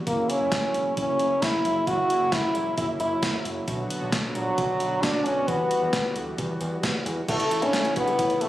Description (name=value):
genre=synth-pop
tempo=133 BPM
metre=4/4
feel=straight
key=unclear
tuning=A4 = 440 Hz
part: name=brassy analog pad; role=sustained chords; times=0.0-8.5 s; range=C#3 to F#4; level=-32 LUFS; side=right 1 dB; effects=chorus
part: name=French horn with straight mute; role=melody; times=0.1-8.5 s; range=F#3 to F#4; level=-24 LUFS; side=equal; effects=tape echo
part: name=fat analog bass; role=bass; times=0.1-8.5 s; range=E1 to E2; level=-34 LUFS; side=equal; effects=none
part: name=gated 80s digital drum machine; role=drums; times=0.1-8.5 s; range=crash cymbal, hi-hat, kick drum, snare drum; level=-29 LUFS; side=equal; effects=gated reverb, gated reverb snare, overdrive
part: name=warbly dusty pluck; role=arpeggios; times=7.3-8.5 s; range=D4 to G4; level=-33 LUFS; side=left 1 dB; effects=chorus, tape echo
room=light reverb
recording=recorded on a phone in the room, studio reverb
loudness=-22 LUFS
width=side -14 dB against mid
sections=0.0-7.3 A section; 7.3-8.5 B section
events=none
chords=0.1 F#7; 3.7 Bm; 5.5 Emadd9; 7.3 A